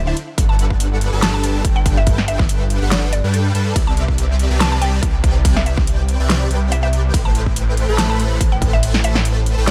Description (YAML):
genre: future bass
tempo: 142 BPM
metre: 4/4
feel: swing 54% on 16ths, half-time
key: G major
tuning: A4 = 439 Hz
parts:
  - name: mallet-like synth pluck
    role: melody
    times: 0.0-9.7 s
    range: D5 to A5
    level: -29 LUFS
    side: equal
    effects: subtle chorus, cassette tape, sidechain pumping, digital delay
  - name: supersaw chords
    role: riff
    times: 0.0-9.7 s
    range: D3 to B5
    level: -27 LUFS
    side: equal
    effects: ensemble chorus, sidechain pumping
  - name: detuned saw bass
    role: bass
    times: 0.0-9.7 s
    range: D1 to G2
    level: -20 LUFS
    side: equal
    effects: chorus, sidechain pumping
  - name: big-room dance drum kit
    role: drums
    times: 0.2-9.7 s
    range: hi-hat, ride cymbal, snare drum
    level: -24 LUFS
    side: equal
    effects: overdrive
  - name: electronic kick drum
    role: drums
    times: 0.4-8.7 s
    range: none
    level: -20 LUFS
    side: equal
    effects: overdrive
room: digital ambience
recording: none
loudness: -17 LUFS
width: mono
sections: 0.0-9.7 A section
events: kick drops out 8.8-9.7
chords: 0.2 Gmaj9; 3.8 Cmaj9; 7.1 Am9